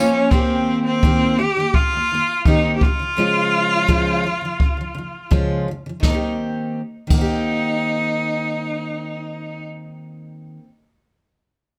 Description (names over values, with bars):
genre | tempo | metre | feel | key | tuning
acoustic pop | 84 BPM | 4/4 | straight | Eb mixolydian | A4 = 440 Hz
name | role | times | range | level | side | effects
bright cello | melody | 0.0-9.7 s | C4 to G4 | -23 LUFS | equal | tape echo
picked steel-string acoustic guitar | accompaniment | 0.0-10.7 s | Db3 to G4 | -24 LUFS | equal | none
jazz brush drum kit | drums | 0.3-7.3 s | crash cymbal, kick drum, snare drum | -21 LUFS | equal | none
room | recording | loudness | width
moderate studio reverb, RT60 0.5 s | none | -19 LUFS | mono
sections
0.3-6.0 A section; 6.0-8.9 B section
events
none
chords
0.3 Eb6; 2.8 Db; 6.0 Eb6